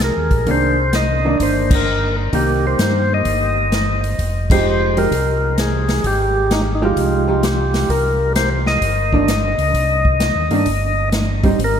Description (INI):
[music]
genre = soul jazz organ trio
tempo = 129 BPM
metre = 4/4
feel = swing 67% on 8ths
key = C minor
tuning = A4 = 440 Hz
[part]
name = percussive tonewheel organ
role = melody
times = 0.0-11.8 s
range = Eb4 to Eb5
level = -19 LUFS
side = left 2 dB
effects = slow rotary speaker
[part]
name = mellow tonewheel organ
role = bass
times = 0.0-11.8 s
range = F1 to G2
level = -20 LUFS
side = equal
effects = overdrive, chorus vibrato, slow rotary speaker
[part]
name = swinging big-band drum kit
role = drums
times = 0.0-11.7 s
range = crash cymbal, hi-hat, kick drum, snare drum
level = -21 LUFS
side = equal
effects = none
[part]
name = vintage hollow-body jazz guitar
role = accompaniment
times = 0.5-11.6 s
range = Eb3 to G4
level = -22 LUFS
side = right 3 dB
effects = none
[sound]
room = wet cathedral reverb, RT60 5.1 s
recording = in a vast, echoing space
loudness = -14 LUFS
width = side -8 dB against mid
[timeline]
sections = 0.0-11.8 A section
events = band accent 1.6, 4.4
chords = 0.5 Cm9; 4.2 Fm9; 7.9 Cm7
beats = 0.01 | 0.47 0.94 1.40 1.87 | 2.33 2.79 3.26 3.72 | 4.19 4.65 5.11 5.58 | 6.04 6.51 6.97 7.43 | 7.90 8.36 8.82 9.29 | 9.75 10.21 10.67 11.13 | 11.60